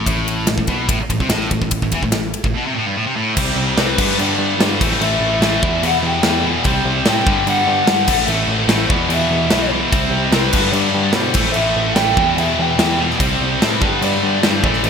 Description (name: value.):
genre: hard rock.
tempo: 146 BPM.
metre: 4/4.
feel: straight.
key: A minor.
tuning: A4 = 440 Hz.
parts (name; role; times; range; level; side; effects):
high-gain distorted guitar; riff; 0.0-14.9 s; E2 to C4; -22 LUFS; left 11 dB; distortion.
scooped high-gain guitar; riff; 0.0-14.9 s; E2 to C4; -22 LUFS; right 10 dB; distortion.
bell-like tine electric piano; bass; 0.0-14.9 s; A1 to B2; -22 LUFS; equal; medium stereo tremolo.
big rock drum kit; drums; 0.1-14.9 s; crash cymbal, kick drum, ride cymbal, snare drum; -19 LUFS; equal; gated reverb.
high-gain distorted guitar; riff; 3.4-14.9 s; G2 to E4; -23 LUFS; equal; distortion.
lead guitar through a small cranked amp; melody; 3.8-14.9 s; B4 to G5; -21 LUFS; left 1 dB; overdrive, wide subtle chorus, digital delay.
room: moderate plate reverb, RT60 1.9 s, studio ambience.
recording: bright 1980s-style digital production.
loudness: -14 LUFS.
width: side -6 dB against mid.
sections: 0.0-3.4 A section; 3.4-14.9 B section.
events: none.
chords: 0.0 Am; 3.4 C; 4.0 G; 4.8 Am; 5.6 Em; 6.7 C; 7.3 G; 8.1 Am; 8.9 Em; 9.9 C; 10.5 G; 11.4 Am; 12.2 Em; 13.2 C; 13.8 G.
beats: | 0.07 0.48 0.90 1.31 | 1.72 2.13 2.55 2.96 | 3.37 3.78 4.19 4.60 | 5.01 5.42 5.83 6.25 | 6.66 7.07 7.47 7.88 | 8.29 8.70 9.11 9.52 | 9.93 10.34 10.75 11.16 | 11.57 11.98 12.39 12.80 | 13.21 13.62 14.03 14.44 | 14.85.